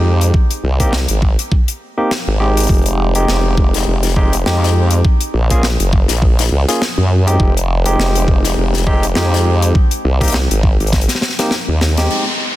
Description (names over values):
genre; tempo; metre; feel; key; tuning
glitch hop; 102 BPM; 4/4; swing 56% on 16ths; unclear; A4 = 440 Hz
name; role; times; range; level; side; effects
barky tine electric piano; stabs; 0.0-12.2 s; Ab3 to Ab4; -20 LUFS; equal; sidechain pumping, digital delay
formant-sweep wobble bass; bass; 0.0-12.1 s; F1 to Gb2; -14 LUFS; equal; chorus, tube saturation
crisp fusion drum kit; drums; 0.2-12.2 s; crash cymbal, hi-hat, snare drum; -20 LUFS; left 2 dB; none
electronic kick drum; drums; 0.3-11.1 s; none; -13 LUFS; equal; overdrive
downlifter; sound effects; 12.1-12.6 s; none; -19 LUFS; equal; none
room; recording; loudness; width
light reverb, small room ambience; dense, heavily limited modern master; -12 LUFS; side -15 dB against mid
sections
0.0-12.1 A section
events
drum fill 10.9-12.1; band accent 12.0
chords
0.3 Abmaj7; 2.7 Fm9; 5.0 Gbmaj7; 7.4 Fm9; 9.8 Abmaj7